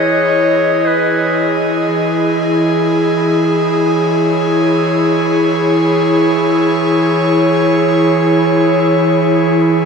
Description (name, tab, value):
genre	ambient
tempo	free time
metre	none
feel	none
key	unclear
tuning	A4 = 440 Hz
part	clear clarinet	melody	0.0-1.6 s	B4 to C#5	-19 LUFS	left 1 dB	ping-pong delay
part	airy breathy pad	sustained chords	0.0-9.9 s	E3 to D#5	-11 LUFS	equal	chorus
room	wet cathedral reverb, RT60 6.3 s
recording	cassette tape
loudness	-11 LUFS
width	side -5 dB against mid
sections	0.0-9.9 A section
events	none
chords	0.0 Emaj7; 1.9 C#m/E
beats	free time